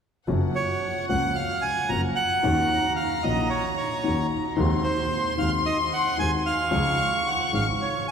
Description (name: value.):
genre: tango.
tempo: 112 BPM.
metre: 4/4.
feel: rubato.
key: F# major.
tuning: A4 = 442 Hz.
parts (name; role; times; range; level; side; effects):
warm chamber violin section; second line; 0.3-8.1 s; F#5 to C#6; -29 LUFS; left 3 dB; none.
warm grand piano; accompaniment; 0.3-7.8 s; G#1 to G#4; -28 LUFS; left 3 dB; none.
clear double bass; bass; 0.3-7.8 s; F#1 to D#2; -29 LUFS; right 1 dB; none.
bandoneon; melody; 0.6-8.1 s; B#4 to A#5; -26 LUFS; right 3 dB; none.
room: wet cathedral reverb, RT60 5.0 s.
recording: recorded in a church or concert hall.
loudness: -22 LUFS.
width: side -7 dB against mid.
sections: 0.3-8.1 A section.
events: none.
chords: 0.3 F#maj7; 2.4 D#m7; 4.6 G#7/D#; 6.7 C#.